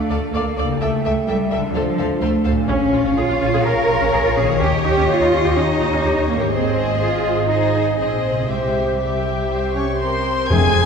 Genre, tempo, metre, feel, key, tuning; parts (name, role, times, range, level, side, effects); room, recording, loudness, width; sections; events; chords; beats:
classical, dramatic, fast romantic movement for symphony orchestra; 117-129 BPM; 4/4; straight; A4 = 440 Hz
mellow French horn section; sustained chords; 0.0-10.7 s; C4 to F5; -24 LUFS; left 2 dB
concert harp; arpeggios; 0.0-10.9 s; F2 to A4; -26 LUFS; left 4 dB
rich symphonic cello section; bass; 0.0-10.9 s; F3 to Bb4; -21 LUFS; right 2 dB
rich chamber violin section; melody; 0.1-10.9 s; Eb5 to Ab6; -28 LUFS; left 5 dB
rich chamber violin section; second line; 0.1-10.9 s; G4 to Ab5; -26 LUFS; left 3 dB
clear symphonic viola section; accompaniment; 0.1-10.9 s; C4 to C5; -26 LUFS; right 2 dB
clear symphonic double bass section; bass; 0.1-10.9 s; F1 to Eb2; -24 LUFS; right 3 dB
dark clarinet; second line; 9.7-10.9 s; C4 to Ab4; -25 LUFS; left 1 dB
clear oboe; second line; 9.8-10.9 s; C5 to Ab5; -27 LUFS; right 2 dB
flute section; second line; 9.8-10.9 s; C5 to Ab5; -26 LUFS; equal
bright trombone section; sustained chords; 10.5-10.7 s; C3 to C4; -26 LUFS; right 6 dB
timpani; percussion; 10.5-10.9 s; F2; -16 LUFS; left 2 dB
wet concert hall reverb, RT60 2.0 s; heard from further back in the room; -16 LUFS; side -6 dB against mid
0.0-10.5 A section
0.0 Dm; 0.8 A7/C#; 1.7 Dm7; 2.7 Bbm7; 4.6 Eb7; 6.5 Ab; 8.5 C
0.34 | 0.81 1.28 1.75 2.22 | 2.69 3.16 3.65 4.13 | 4.61 5.09 5.57 6.04 | 6.53 7.01 7.49 7.98 | 8.48 8.99 9.50 10.00 | 10.50